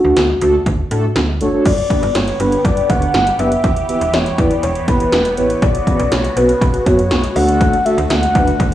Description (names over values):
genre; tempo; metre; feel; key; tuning
synth-pop; 121 BPM; 4/4; straight; unclear; A4 = 438 Hz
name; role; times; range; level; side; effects
mellow horn-like synth lead; melody; 0.0-8.7 s; F#4 to F#5; -17 LUFS; left 1 dB; chorus, analog delay
mellow synth brass; accompaniment; 0.0-8.5 s; A3 to C#5; -18 LUFS; equal; chorus
slap-like FM bass; bass; 0.0-8.7 s; E1 to A2; -20 LUFS; equal; none
80s electronic pad drums; drums; 0.2-8.7 s; crash cymbal, hi-hat, kick drum, snare drum; -18 LUFS; equal; none
phased analog pad; sustained chords; 1.7-8.7 s; C#3 to G4; -24 LUFS; equal; phaser, chorus
room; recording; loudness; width
light reverb, digital ambience; dry, gritty hardware recording, studio reverb; -12 LUFS; side -12 dB against mid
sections
0.0-1.7 A section; 1.7-8.7 B section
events
none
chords
0.0 D; 1.7 G; 3.6 Em; 5.6 Bsus2; 7.4 D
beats
0.17 0.66 1.16 | 1.66 2.15 2.65 3.14 | 3.64 4.13 4.63 5.13 | 5.62 6.12 6.61 7.11 | 7.61 8.10 8.60